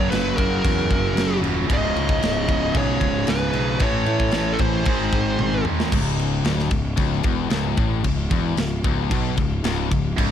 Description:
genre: heavy metal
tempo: 113 BPM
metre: 4/4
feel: straight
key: C# minor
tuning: A4 = 443 Hz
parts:
  - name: high-gain lead guitar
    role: melody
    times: 0.0-5.6 s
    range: A4 to D#5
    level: -26 LUFS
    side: equal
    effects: distortion
  - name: high-gain lead guitar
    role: second line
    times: 0.0-5.6 s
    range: F#4 to A4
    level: -34 LUFS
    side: right 2 dB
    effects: none
  - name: heavy high-gain guitar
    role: riff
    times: 0.0-5.9, 10.2-10.3 s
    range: C#2 to A3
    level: -26 LUFS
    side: right 11 dB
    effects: distortion
  - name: overdriven semi-hollow guitar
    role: riff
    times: 0.0-10.3 s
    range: C#2 to A4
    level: -27 LUFS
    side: equal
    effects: none
  - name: tight distorted guitar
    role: riff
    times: 0.0-10.3 s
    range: C#2 to A3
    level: -28 LUFS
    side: left 13 dB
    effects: distortion
  - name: fuzz picked electric bass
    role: bass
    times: 0.0-10.3 s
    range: C#1 to A2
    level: -25 LUFS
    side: equal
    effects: overdrive
  - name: tight metal drum kit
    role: drums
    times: 0.1-10.3 s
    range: crash cymbal, kick drum, snare drum, toms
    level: -24 LUFS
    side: equal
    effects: none
room: light reverb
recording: dark, warm production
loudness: -19 LUFS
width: side -9 dB against mid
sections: 0.0-5.9 A section; 5.9-10.3 B section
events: drum fill 5.4-5.9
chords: 0.0 F#; 1.7 C#m; 3.8 A; 4.9 G#; 5.9 C#m

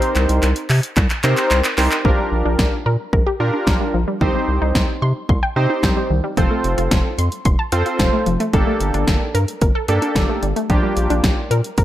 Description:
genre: synth-pop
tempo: 111 BPM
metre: 4/4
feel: straight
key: C dorian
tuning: A4 = 440 Hz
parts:
  - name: warm analog keys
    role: accompaniment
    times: 0.0-11.4 s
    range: Bb3 to C5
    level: -21 LUFS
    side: right 1 dB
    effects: chorus
  - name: punchy analog drum machine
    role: drums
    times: 0.0-11.8 s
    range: handclaps, hi-hat, kick drum, snare drum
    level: -19 LUFS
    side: equal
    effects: gated reverb
  - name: round analog bass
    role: bass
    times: 0.2-11.8 s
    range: F1 to C3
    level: -19 LUFS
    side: equal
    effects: none
  - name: wide unison pluck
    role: arpeggios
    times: 2.0-11.8 s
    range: Eb3 to C6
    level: -24 LUFS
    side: equal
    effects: tape echo
room: light reverb, digital ambience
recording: none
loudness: -15 LUFS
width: side -13 dB against mid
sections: 0.0-2.0 A section; 2.0-11.8 B section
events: drum fill 0.0-2.0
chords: 0.0 Cm7; 2.0 Bb6; 4.2 Cm; 6.4 F; 8.5 Gmadd9; 10.7 Bb6

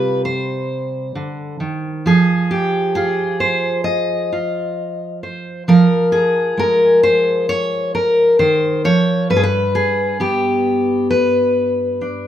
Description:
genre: folk, solo fingerstyle acoustic guitar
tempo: 66 BPM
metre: 4/4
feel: straight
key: unclear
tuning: A4 = 441 Hz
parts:
  - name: fingerpicked steel-string acoustic guitar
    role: solo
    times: 0.0-12.3 s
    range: G2 to Eb5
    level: -14 LUFS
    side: equal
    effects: none
room: wet large studio reverb, RT60 1.2 s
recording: minimal, uncompressed stereo recording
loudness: -14 LUFS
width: side -10 dB against mid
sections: 0.0-12.3 A section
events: none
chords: 0.0 Cm; 2.1 Fm7; 5.7 Eb13sus4; 9.3 G

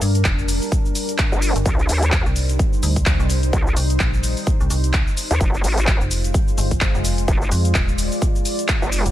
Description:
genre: bass house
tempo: 128 BPM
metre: 4/4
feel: swing 58% on 16ths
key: unclear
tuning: A4 = 440 Hz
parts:
  - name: deep dark ambient pad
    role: sustained chords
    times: 0.0-9.1 s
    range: G3 to D5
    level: -27 LUFS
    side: equal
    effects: chorus, built-in reverb, sidechain pumping
  - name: metallic FM bass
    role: bass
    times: 0.0-9.1 s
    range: Eb1 to G2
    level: -20 LUFS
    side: equal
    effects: overdrive, sidechain pumping
  - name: big-room dance drum kit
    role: drums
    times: 0.0-9.1 s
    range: cabasa, handclaps, hi-hat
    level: -25 LUFS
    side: left 1 dB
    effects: none
  - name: electronic kick drum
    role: drums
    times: 0.2-8.8 s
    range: none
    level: -20 LUFS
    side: equal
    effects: none
  - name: vowel-sweep wobble bass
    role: bass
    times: 1.3-9.0 s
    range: F1 to Eb2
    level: -19 LUFS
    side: equal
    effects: chorus, overdrive, sidechain pumping
room: little or no reverb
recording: none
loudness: -17 LUFS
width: side -13 dB against mid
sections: 0.0-9.1 A section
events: none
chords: 0.0 Gm; 1.7 Cm; 5.4 Fm

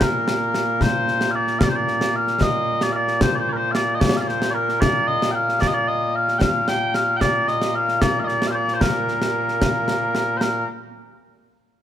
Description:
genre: scottish traditional, Scottish pipe music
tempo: 75 BPM (dotted quarters)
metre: 6/8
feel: straight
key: Bb major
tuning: A4 = 436 Hz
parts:
  - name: mellow small bagpipes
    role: melody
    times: 0.0-10.7 s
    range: Bb2 to G5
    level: -20 LUFS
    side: equal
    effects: none
  - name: concert snare drum and concert bass drum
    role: drums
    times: 0.0-10.7 s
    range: none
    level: -23 LUFS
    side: equal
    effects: none
room: light reverb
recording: close, detailed microphones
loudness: -18 LUFS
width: side -10 dB against mid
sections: 0.0-10.4 A section; 10.4-11.8 B section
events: none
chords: none

